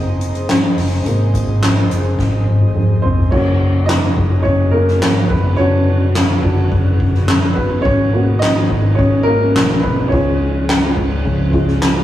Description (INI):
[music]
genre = piano-driven pop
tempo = 106 BPM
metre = 4/4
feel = straight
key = F# major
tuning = A4 = 439 Hz
[part]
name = dark baby grand piano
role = accompaniment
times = 0.0-12.0 s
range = B#2 to D#5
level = -19 LUFS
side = equal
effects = none
[part]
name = airy breathy pad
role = sustained chords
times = 0.0-12.0 s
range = B2 to A#5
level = -25 LUFS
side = equal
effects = chorus
[part]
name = vintage muted fingered electric bass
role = bass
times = 0.0-12.0 s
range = E#1 to C#2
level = -17 LUFS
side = equal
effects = none
[part]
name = soft-mallet drum kit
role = drums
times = 0.2-12.0 s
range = crash cymbal, handclaps, hi-hat, kick drum, ride cymbal, snare drum, toms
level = -16 LUFS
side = equal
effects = none
[sound]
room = moderate studio ambience, RT60 0.5 s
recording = rough rehearsal-room recording, small room ambience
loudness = -12 LUFS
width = side -13 dB against mid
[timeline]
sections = 0.0-3.3 A section; 3.3-12.0 B section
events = grand piano solo 0.0-3.3, 3.3-12.0; drum fill 2.2-3.3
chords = 0.0 G#add9; 3.3 F#; 5.3 Bm/F#; 7.9 G#m7; 10.1 C#